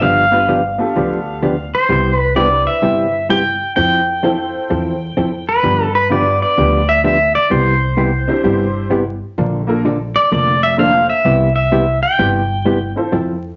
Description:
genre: country, western swing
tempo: 128 BPM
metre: 4/4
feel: swing 66% on 8ths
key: C major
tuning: A4 = 440 Hz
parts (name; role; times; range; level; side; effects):
- pedal steel guitar; melody; 0.0-12.9 s; B4 to G5; -18 LUFS; equal; none
- hollow-body jazz guitar; accompaniment; 0.0-13.3 s; C3 to A4; -20 LUFS; equal; none
- upright bass; bass; 0.0-13.5 s; F1 to G2; -23 LUFS; equal; none
- honky-tonk upright piano; accompaniment; 0.3-13.1 s; Bb3 to C5; -24 LUFS; equal; none
room: wet studio reverb, RT60 0.7 s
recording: vinyl crackle, nothing above 7.5 kHz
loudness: -15 LUFS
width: mono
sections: 0.0-9.4 A section; 9.4-13.6 B section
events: none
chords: 0.0 G7; 1.9 Cmaj9; 3.8 Fmaj7; 5.6 G7; 7.5 Cmaj9; 9.4 Bbmaj7; 11.3 Cmaj7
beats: | 0.01 0.48 0.95 1.42 | 1.89 2.36 2.83 3.30 | 3.77 4.24 4.71 5.17 | 5.64 6.11 6.58 7.04 | 7.51 7.98 8.45 8.91 | 9.38 9.85 10.32 10.79 | 11.25 11.72 12.19 12.66 | 13.12

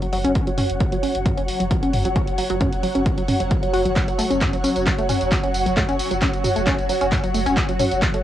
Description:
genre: driving peak-time techno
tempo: 133 BPM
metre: 4/4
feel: straight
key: unclear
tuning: A4 = 441 Hz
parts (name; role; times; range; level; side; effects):
- tight sequenced synth; riff; 0.0-8.2 s; F#3 to F#4; -24 LUFS; equal; chorus, tube saturation, sidechain pumping, cassette tape, analog delay
- saturated sub bass; bass; 0.0-8.2 s; F#1; -29 LUFS; equal; overdrive, sidechain pumping, low-pass filter
- swarming drone; drone; 0.0-8.2 s; F#3 to F#4; -29 LUFS; equal; built-in reverb, sidechain pumping, cassette tape
- punchy analog drum machine; drums; 0.0-8.2 s; handclaps, hi-hat, tambourine, toms; -26 LUFS; equal; sidechain pumping on hats, sidechain pumping on cymbals, sidechain pumping on toms, sidechain pumping on perc
- ethereal airy pad; texture; 0.0-8.2 s; C#5 to F#5; -26 LUFS; right 1 dB; ensemble chorus, built-in reverb, phaser, sidechain pumping, cassette tape
- electronic kick drum; drums; 0.4-8.1 s; none; -22 LUFS; equal; none
room: moderate small room reverb, RT60 0.5 s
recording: home recording on cassette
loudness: -18 LUFS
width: side -12 dB against mid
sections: 0.0-8.2 A section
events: none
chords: 0.0 F#5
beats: | 0.35 0.80 1.25 1.71 | 2.16 2.61 3.06 3.51 | 3.96 4.41 4.86 5.32 | 5.77 6.22 6.67 7.12 | 7.57 8.02

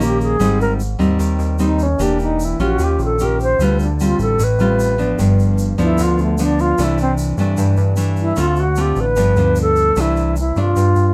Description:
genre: bossa nova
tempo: 151 BPM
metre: 4/4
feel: straight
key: unclear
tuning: A4 = 440 Hz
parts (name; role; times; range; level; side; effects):
- bright alto flute; melody; 0.0-11.1 s; A3 to C5; -21 LUFS; equal; none
- nylon-string guitar; accompaniment; 0.0-11.1 s; G2 to G4; -20 LUFS; equal; none
- fat analog bass; bass; 0.0-11.1 s; E1 to G2; -21 LUFS; equal; none
- egg shaker; percussion; 0.0-11.1 s; none; -38 LUFS; equal; none
room: little or no reverb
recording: close, detailed microphones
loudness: -16 LUFS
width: mono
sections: 0.0-10.0 A section; 10.0-11.1 B section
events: alto flute solo 0.0-10.0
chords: 0.4 Abmaj7; 2.0 Em7b5; 2.8 Eb9; 3.6 Dm7; 5.2 G7; 6.8 C69; 8.4 Dm7; 9.2 G7; 10.0 C69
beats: 0.01 | 0.41 0.81 1.21 1.60 | 2.00 2.40 2.80 3.20 | 3.59 3.99 4.39 4.79 | 5.19 5.58 5.98 6.38 | 6.78 7.18 7.58 7.97 | 8.37 8.77 9.17 9.57 | 9.96 10.36 10.76

